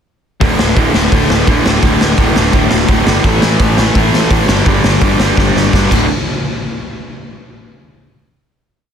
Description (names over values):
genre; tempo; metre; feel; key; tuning
punk rock; 169 BPM; 4/4; straight; unclear; A4 = 439 Hz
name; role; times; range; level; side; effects
distorted electric guitar; riff; 0.4-6.1 s; D2 to A3; -16 LUFS; left 12 dB; distortion
raw garage guitar; riff; 0.4-6.1 s; D2 to A3; -16 LUFS; right 13 dB; overdrive
fuzz picked electric bass; bass; 0.4-6.1 s; D1 to A1; -17 LUFS; equal; overdrive
raw garage drum kit; drums; 0.4-6.0 s; crash cymbal, hi-hat, kick drum, snare drum; -14 LUFS; equal; none
room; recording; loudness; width
little or no reverb; dense, heavily limited modern master; -9 LUFS; side -8 dB against mid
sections
0.4-6.1 verse; 6.1-7.5 final hit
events
drum fill 5.4-6.1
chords
0.4 D5; 3.2 A5; 4.5 G5; 5.9 D5; 6.1 N.C.